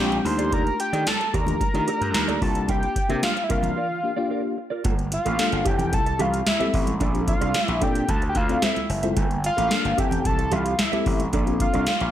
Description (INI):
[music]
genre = early-eighties boogie funk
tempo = 111 BPM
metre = 4/4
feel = straight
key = F major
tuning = A4 = 440 Hz
[part]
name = fat analog lead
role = melody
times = 0.0-12.1 s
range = E5 to C6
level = -26 LUFS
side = equal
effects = none
[part]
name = mellow FM electric piano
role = accompaniment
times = 0.0-11.9 s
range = A3 to Bb4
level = -29 LUFS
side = left 6 dB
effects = chorus
[part]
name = mellow electric guitar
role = riff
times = 0.0-12.0 s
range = Bb3 to E5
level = -31 LUFS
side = right 6 dB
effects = ensemble chorus
[part]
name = gritty slap bass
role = bass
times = 0.0-12.1 s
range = F1 to Eb3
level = -26 LUFS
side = equal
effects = overdrive
[part]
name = booming analog drum machine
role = drums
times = 0.1-12.1 s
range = hi-hat, kick drum, snare drum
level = -25 LUFS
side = equal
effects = gated reverb
[part]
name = congas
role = percussion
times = 0.1-12.0 s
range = none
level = -32 LUFS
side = right 3 dB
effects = none
[sound]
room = digital ambience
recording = none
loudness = -20 LUFS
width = side -11 dB against mid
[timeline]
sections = 0.0-4.8 A section; 4.8-12.1 B section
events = break 3.8-4.8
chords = 0.3 Ebmaj9#11; 2.4 C9sus4; 4.8 Gm9; 5.7 Fmaj9; 7.0 Bbmaj9; 8.1 Dm9; 9.2 Gm9; 10.0 Fmaj9; 11.3 Bbmaj9